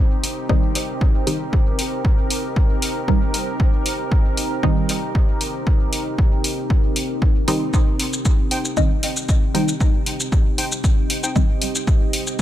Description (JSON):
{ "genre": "dub techno", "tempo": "116 BPM", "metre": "4/4", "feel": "straight", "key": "C minor", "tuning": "A4 = 441 Hz", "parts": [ { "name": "deep dark ambient pad", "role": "sustained chords", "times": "0.0-12.4 s", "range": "C4 to Eb5", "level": "-26 LUFS", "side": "equal", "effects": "chorus, built-in reverb, sidechain pumping" }, { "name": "filtered dub chord stab", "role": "stabs", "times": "0.0-11.5 s", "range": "Eb3 to Eb4", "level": "-25 LUFS", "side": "right 1 dB", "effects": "phaser, sidechain pumping, dub echo" }, { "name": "electronic hi-hat and shaker", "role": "drums", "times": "0.2-12.4 s", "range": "none", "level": "-24 LUFS", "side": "left 1 dB", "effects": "none" }, { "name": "electronic kick drum", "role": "drums", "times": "0.5-12.4 s", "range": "none", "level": "-17 LUFS", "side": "equal", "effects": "none" }, { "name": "warbly lo-fi synth keys", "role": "riff", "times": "8.5-11.3 s", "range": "Eb4 to G5", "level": "-31 LUFS", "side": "equal", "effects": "chorus, sidechain pumping, dub echo" } ], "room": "digital ambience", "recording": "none", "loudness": "-17 LUFS", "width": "side -12 dB against mid", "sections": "0.0-12.4 A section", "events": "none", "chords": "0.0 Cm" }